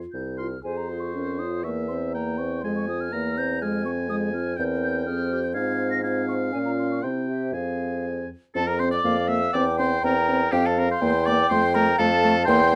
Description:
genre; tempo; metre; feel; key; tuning
quick classical-period movement for wind quintet; 122 BPM; 2/4; straight; F minor, F major from 8.6 s; A4 = 439 Hz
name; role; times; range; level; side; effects
mellow clarinet; accompaniment; 0.0-12.8 s; E4 to G5; -32 LUFS; equal; none
mellow hollow silver concert flute; melody; 0.1-12.8 s; E5 to Bb6; -31 LUFS; equal; none
warm bassoon; bass; 0.1-12.8 s; C2 to C3; -29 LUFS; equal; none
bright oboe; second line; 0.4-12.8 s; G4 to C6; -31 LUFS; equal; none
mellow French horn; accompaniment; 0.4-12.8 s; Ab3 to Ab4; -30 LUFS; equal; none
room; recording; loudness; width
moderate studio reverb, RT60 0.5 s; dark, warm production; -24 LUFS; mono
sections
0.6-8.6 A section; 8.6-12.8 A section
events
none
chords
0.0 F5; 0.6 Fm; 1.1 Bbm/F; 1.6 C7/E; 2.6 Fm; 3.1 C7/E; 3.6 Fm; 4.6 C7/E; 5.1 Fm; 5.6 Fm/Ab; 6.5 Bbm; 7.0 C; 7.5 Fm; 8.6 F5; 9.0 Bb/F; 9.5 C7/E; 10.5 F5; 11.0 C7/E; 11.5 F

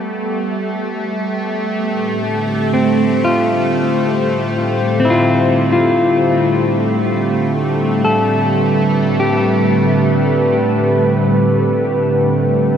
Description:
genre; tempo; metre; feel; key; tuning
ambient; free time; none; none; unclear; A4 = 436 Hz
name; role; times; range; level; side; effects
warbly tape-like pad; sustained chords; 0.0-12.8 s; A2 to C5; -16 LUFS; right 1 dB; chorus, built-in reverb
bowed-like drone; drone; 0.0-12.8 s; A3; -20 LUFS; right 1 dB; built-in reverb, phaser
electric guitar at the edge of break-up; arpeggios; 2.7-12.1 s; C4 to A4; -18 LUFS; left 2 dB; spring reverb, tape echo
room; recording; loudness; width
wet huge ambient reverb, RT60 7.9 s; none; -13 LUFS; side -8 dB against mid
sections
0.0-12.8 A section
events
none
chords
0.0 A7(no3); 1.8 Csus2/A

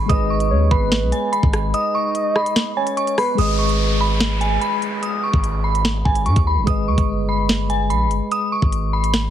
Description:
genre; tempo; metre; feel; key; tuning
hip hop, drill; 146 BPM; 4/4; half-time; G# harmonic minor; A4 = 439 Hz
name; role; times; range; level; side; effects
dark detuned synth bell; melody; 0.0-9.3 s; G#5 to D#6; -22 LUFS; equal; chorus, phaser
mellow tine electric piano; accompaniment; 0.0-9.3 s; G#3 to D#5; -26 LUFS; left 1 dB; medium stereo tremolo
long sustained 808-style bass; bass; 0.0-9.3 s; G1 to G#2; -20 LUFS; equal; none
soft octave-layered synth lead; second line; 0.1-3.4 s; B4 to D#5; -24 LUFS; right 2 dB; chorus, ping-pong delay
drill drum kit; drums; 0.1-9.2 s; hi-hat, kick drum, rim click, snare drum; -20 LUFS; equal; vintage 12-bit sampler grit
downlifter; sound effects; 3.4-6.7 s; none; -28 LUFS; equal; none
room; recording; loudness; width
digital ambience; heavily compressed radio sound; -16 LUFS; side -10 dB against mid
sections
0.0-3.4 A section; 3.4-9.3 B section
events
kick muted 1.7-3.4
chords
0.0 G#m

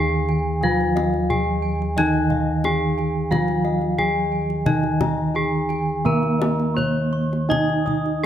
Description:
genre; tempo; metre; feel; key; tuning
Javanese gamelan; 79-89 BPM; 4/4; straight; Eb slendro; A4 = 440 Hz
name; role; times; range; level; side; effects
gamelan-type bronze metallophone; melody; 0.0-8.3 s; Eb4 to Eb5; -24 LUFS; equal; none
gamelan-type bronze metallophone; accompaniment; 0.0-8.3 s; Eb3 to Eb4; -24 LUFS; right 2 dB; none
gamelan-type bossed gongs; arpeggios; 0.0-8.3 s; Eb5 to Db6-45c; -29 LUFS; left 10 dB; none
gamelan-type bronze metallophone; arpeggios; 0.0-8.2 s; Eb5 to Eb6; -30 LUFS; right 4 dB; slapback echo
gamelan-type bossed gongs; bass; 0.0-8.3 s; Eb2 to Eb5; -25 LUFS; equal; none
kendang; percussion; 0.3-8.1 s; none; -29 LUFS; left 3 dB; none
room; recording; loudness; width
moderate recital hall reverb, RT60 1.6 s; none; -19 LUFS; side -10 dB against mid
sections
0.0-8.3 A section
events
none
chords
none

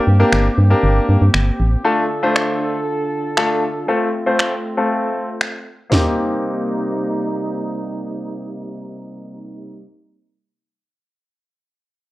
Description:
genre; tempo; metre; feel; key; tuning
dance-pop; 118 BPM; 4/4; straight; C dorian; A4 = 440 Hz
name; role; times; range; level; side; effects
mellow brass ensemble; sustained chords; 0.0-9.8 s; C3 to A4; -24 LUFS; right 1 dB; low-pass filter
organ-like FM bass; bass; 0.1-1.8 s; G1 to G2; -13 LUFS; equal; none
bright concert grand piano; accompaniment; 0.2-9.9 s; A3 to C5; -19 LUFS; left 1 dB; low-pass filter
house drum kit; drums; 0.3-6.0 s; finger snaps, snare drum, toms; -19 LUFS; equal; overdrive
room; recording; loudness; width
moderate plate reverb, RT60 1.0 s, small room ambience; worn, warbling old tape, cassette tape, warbly pitch drift; -16 LUFS; side -17 dB against mid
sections
0.0-5.9 A section; 5.9-10.0 B section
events
filter sweep 0.0-5.9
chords
0.0 Gm; 1.8 Dm; 3.9 F; 5.9 Cm7

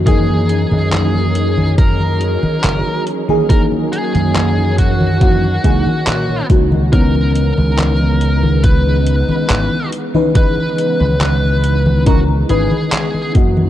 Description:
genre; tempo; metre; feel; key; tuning
vaporwave; 70 BPM; 4/4; straight; C# dorian; A4 = 439 Hz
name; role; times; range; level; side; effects
FM electric piano with soft pad layer; accompaniment; 0.0-13.7 s; E3 to B4; -19 LUFS; equal; phaser, lush chorus
soft string machine; sustained chords; 0.0-13.7 s; C#3 to A#4; -23 LUFS; equal; phaser, ensemble chorus
slap bass with an envelope filter; bass; 0.0-13.7 s; F#1 to A#2; -15 LUFS; equal; none
high-gain lead guitar; melody; 0.1-13.3 s; F#4 to B4; -22 LUFS; equal; distortion, tape echo
detuned 8-bit digital drum machine; drums; 0.1-13.7 s; congas, handclaps, hi-hat; -20 LUFS; left 1 dB; overdrive
electronic kick drum; drums; 0.1-13.5 s; none; -12 LUFS; equal; overdrive
room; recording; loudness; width
light reverb; dark, warm production; -12 LUFS; side -12 dB against mid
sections
0.0-13.7 A section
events
none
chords
0.0 F#13; 6.9 C#m9

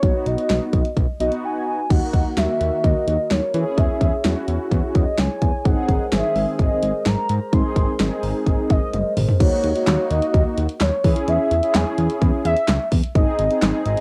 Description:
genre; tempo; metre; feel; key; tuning
synth-pop; 128 BPM; 4/4; straight; C# dorian; A4 = 441 Hz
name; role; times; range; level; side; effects
warm velvety synth lead; melody; 0.0-14.0 s; C#5 to B#5; -26 LUFS; equal; chorus, cassette tape
mellow synth brass; accompaniment; 0.0-14.0 s; D#3 to G#4; -27 LUFS; equal; chorus, cassette tape
fat analog bass; bass; 0.0-14.0 s; F#1 to E3; -25 LUFS; equal; tube saturation
pop drum kit; drums; 0.0-14.0 s; crash cymbal, handclaps, hi-hat, kick drum, snare drum, toms; -22 LUFS; equal; cassette tape
glass harmonica; sustained chords; 1.9-9.4 s; G#3 to C#5; -33 LUFS; equal; cassette tape
room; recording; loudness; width
light reverb; home recording on cassette; -20 LUFS; mono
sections
0.0-1.9 A section; 1.9-9.4 B section; 9.4-14.0 C section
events
break 1.4-1.9; drum fill 8.9-9.4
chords
0.0 B; 1.9 D#m; 3.5 C#m/E; 5.7 G#add9; 9.4 D#m; 11.0 C#m/E; 13.2 G#

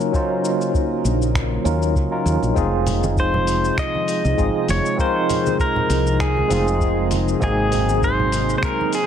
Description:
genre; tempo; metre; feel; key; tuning
sunset chillout; 99 BPM; 4/4; swing 55% on 16ths; unclear; A4 = 440 Hz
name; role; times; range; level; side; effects
barky tine electric piano; accompaniment; 0.0-9.1 s; Gb3 to C5; -23 LUFS; equal; overdrive, medium stereo tremolo, auto-pan, analog delay
airy breathy pad; sustained chords; 0.0-9.1 s; C3 to Eb4; -25 LUFS; right 1 dB; chorus
dusty soul sampler-style drum kit; drums; 0.0-9.1 s; finger snaps, hi-hat, shaker; -31 LUFS; left 2 dB; none
electronic kick drum; drums; 0.1-8.8 s; none; -23 LUFS; equal; none
woody fretless electric bass; bass; 1.0-8.5 s; F1 to Eb2; -22 LUFS; equal; none
congas; percussion; 2.9-8.9 s; none; -29 LUFS; right 3 dB; none
pedal steel guitar; melody; 3.2-9.1 s; Ab4 to Eb5; -22 LUFS; left 1 dB; analog delay
room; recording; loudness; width
light reverb; echo-heavy mix; -17 LUFS; side -9 dB against mid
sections
0.0-9.1 A section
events
none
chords
0.0 Ebm7; 2.6 Fm7; 7.4 Ab7

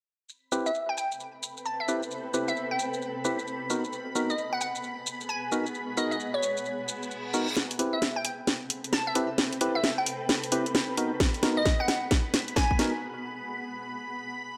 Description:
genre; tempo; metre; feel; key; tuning
UK garage, two-step garage; 132 BPM; 4/4; swing 63% on 16ths; unclear; A4 = 442 Hz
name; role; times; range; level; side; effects
soft string machine; sustained chords; 0.3-14.6 s; B5; -42 LUFS; equal; phaser, ensemble chorus, sidechain pumping
garage drum kit; drums; 0.3-12.9 s; hi-hat, shaker, snare drum; -31 LUFS; equal; small room ambience
granular cloud pad; texture; 1.2-13.0 s; B3 to G5; -40 LUFS; equal; built-in reverb, sidechain pumping
percussive organ stab; stabs; 0.5-12.9 s; B3 to B4; -33 LUFS; equal; chorus, tape echo
glassy wavetable pluck; melody; 0.7-12.7 s; C#5 to A5; -34 LUFS; equal; chorus, tape echo
reverse cymbal; sound effects; 7.0-7.6 s; none; -39 LUFS; equal; none
electronic kick drum; drums; 11.2-12.8 s; none; -29 LUFS; equal; small room ambience
room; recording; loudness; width
moderate digital room reverb, RT60 1.2 s; none; -29 LUFS; mono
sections
0.3-7.6 A section; 7.6-14.6 B section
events
reverse cymbal 7.0-7.6; build-up 7.6-14.6; drum fill 7.6-13.0; filter sweep on string machine 7.6-14.6; break 13.0-14.6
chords
0.3 Am9; 3.7 G#m9; 7.6 Am9; 11.0 G#m9

